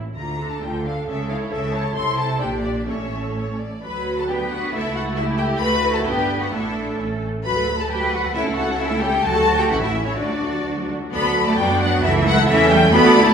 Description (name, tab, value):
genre	quick classical-period movement for string orchestra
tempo	124-139 BPM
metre	2/4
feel	rubato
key	D major from 3.8 s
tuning	A4 = 440 Hz
part	rich symphonic cello section	bass	0.0-13.3 s	A2 to B4	-24 LUFS	right 2 dB	none
part	warm symphonic double bass section	bass	0.0-13.3 s	G1 to F#2	-26 LUFS	right 2 dB	none
part	warm symphonic violin section	melody	0.2-13.3 s	C#5 to C6	-23 LUFS	left 4 dB	none
part	rich symphonic viola section	accompaniment	0.2-13.3 s	E3 to C#5	-24 LUFS	right 2 dB	none
part	rich chamber violin section	second line	0.6-13.3 s	C#4 to E5	-24 LUFS	left 1 dB	none
room	wet recital hall reverb, RT60 1.2 s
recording	recorded in a church or concert hall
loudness	-18 LUFS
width	side -7 dB against mid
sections	0.0-3.8 A section; 3.8-11.1 A section; 11.1-13.3 A section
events	none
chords	0.2 Dm; 1.1 A/C#; 2.0 Am/C; 2.4 Gm/Bb; 2.9 A; 3.8 D; 4.7 A/C#; 5.6 D; 6.1 G; 6.5 Asus4; 7.0 A; 7.5 D; 8.4 A/C#; 9.2 D; 9.7 A; 10.2 D; 12.0 A/C#